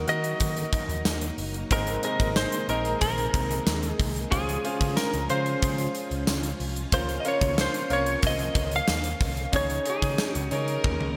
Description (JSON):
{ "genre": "1980s-style pop", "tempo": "92 BPM", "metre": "4/4", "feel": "straight", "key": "Db major", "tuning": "A4 = 443 Hz", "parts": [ { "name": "direct-recorded clean electric guitar", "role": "melody", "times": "0.0-10.5 s", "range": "Ab4 to F5", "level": "-32 LUFS", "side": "equal", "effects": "analog chorus, delay" }, { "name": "clear concert grand piano", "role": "accompaniment", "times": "0.0-11.2 s", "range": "Ab2 to F5", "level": "-34 LUFS", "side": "equal", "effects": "none" }, { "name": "string machine, violins", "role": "sustained chords", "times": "0.0-11.2 s", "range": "C3 to F4", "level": "-39 LUFS", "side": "equal", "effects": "ensemble chorus" }, { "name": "picked electric bass", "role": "bass", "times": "0.0-11.1 s", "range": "Gb1 to Eb3", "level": "-34 LUFS", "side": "equal", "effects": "none" }, { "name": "gated 80s drum kit", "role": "drums", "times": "0.1-11.2 s", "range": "hi-hat, kick drum, snare drum, tambourine, toms", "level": "-30 LUFS", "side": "equal", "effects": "none" }, { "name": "rich studio violin section", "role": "second line", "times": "10.5-11.2 s", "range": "Bb4", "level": "-36 LUFS", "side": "equal", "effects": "delay" } ], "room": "moderate lush hall reverb, RT60 2.6 s", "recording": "bright 1980s-style digital production", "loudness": "-26 LUFS", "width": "mono", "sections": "0.0-11.2 A section", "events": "drum fill 10.8-11.2", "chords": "0.0 Ebm; 1.7 Abadd9; 4.3 Dbmaj7; 6.9 Bbmadd9; 9.5 Dbsus2" }